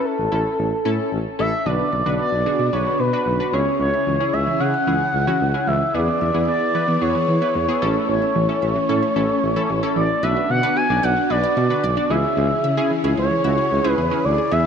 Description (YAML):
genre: synth-pop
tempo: 112 BPM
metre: 4/4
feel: straight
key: B dorian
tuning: A4 = 442 Hz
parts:
  - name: expressive portamento lead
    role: melody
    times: 0.0-14.7 s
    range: A4 to G#5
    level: -21 LUFS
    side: equal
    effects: chorus, slapback echo
  - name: funky polysynth comp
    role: accompaniment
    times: 0.0-14.7 s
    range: B3 to D5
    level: -26 LUFS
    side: equal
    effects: chorus
  - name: warm tuba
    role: bass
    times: 0.2-14.6 s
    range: A1 to E3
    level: -23 LUFS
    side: equal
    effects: none
  - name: string machine, violas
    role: sustained chords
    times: 1.7-14.7 s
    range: C#3 to B4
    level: -26 LUFS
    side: equal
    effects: ensemble chorus
  - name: wide unison pluck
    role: arpeggios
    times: 1.7-14.6 s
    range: D3 to E5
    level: -29 LUFS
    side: right 2 dB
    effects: auto-pan, slapback echo
room: moderate lush hall reverb, RT60 2.9 s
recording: dark, warm production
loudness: -17 LUFS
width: side -7 dB against mid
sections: 0.0-1.7 A section; 1.7-10.2 B section; 10.2-14.7 C section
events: none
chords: 0.0 A; 1.7 Bm; 3.5 C#m; 5.9 E; 7.8 A; 10.2 Bm; 12.1 C#m